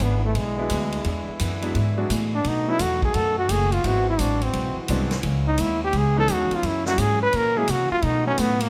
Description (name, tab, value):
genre	jazz, big band swing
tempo	172 BPM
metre	4/4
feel	swing 65% on 8ths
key	unclear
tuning	A4 = 440 Hz
part	clear trombone	melody	0.0-8.7 s	G#3 to B4	-25 LUFS	equal	none
part	fingerpicked steel-string acoustic guitar	accompaniment	0.0-8.6 s	F#2 to G#4	-36 LUFS	equal	none
part	clear trombone section	sustained chords	0.0-8.7 s	C#3 to F#4	-37 LUFS	equal	none
part	upright bass	bass	0.0-8.7 s	F#1 to C3	-27 LUFS	equal	none
part	swinging big-band drum kit	drums	0.0-8.7 s	hi-hat, kick drum, ride cymbal, snare drum	-35 LUFS	equal	none
part	warm upright piano	accompaniment	0.6-8.4 s	E3 to F#4	-33 LUFS	equal	none
room	light reverb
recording	close, detailed microphones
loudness	-23 LUFS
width	mono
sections	0.0-8.7 A section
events	trombone solo 0.0-8.7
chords	0.0 E7; 2.4 B7; 3.8 G#7alt; 5.2 C#m7; 6.6 F#7; 8.0 B7